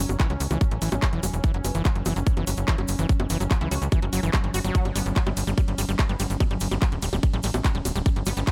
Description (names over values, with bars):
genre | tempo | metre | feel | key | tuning
psychedelic trance | 145 BPM | 4/4 | straight | unclear | A4 = 440 Hz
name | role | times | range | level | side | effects
resonant blip pluck | second line | 0.0-8.4 s | B3 to F#4 | -44 LUFS | equal | none
pulsing gated texture | sustained chords | 0.0-8.5 s | F#3 to C#4 | -37 LUFS | equal | chorus, built-in reverb, sidechain pumping
overdriven acid bass | riff | 0.0-8.4 s | E3 to F#4 | -34 LUFS | equal | distortion, sidechain pumping, digital delay
tight sequencer bass | bass | 0.0-8.4 s | D1 to C#2 | -29 LUFS | equal | none
garage drum kit | drums | 0.1-8.5 s | bongos, handclaps, hi-hat, ride cymbal | -34 LUFS | equal | none
egg shaker | percussion | 0.1-8.5 s | none | -40 LUFS | equal | none
electronic kick drum | drums | 0.2-8.5 s | none | -24 LUFS | equal | none
room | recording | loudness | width
digital ambience | none | -24 LUFS | mono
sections
0.0-8.5 A section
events
none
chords
0.0 F#5; 4.7 G5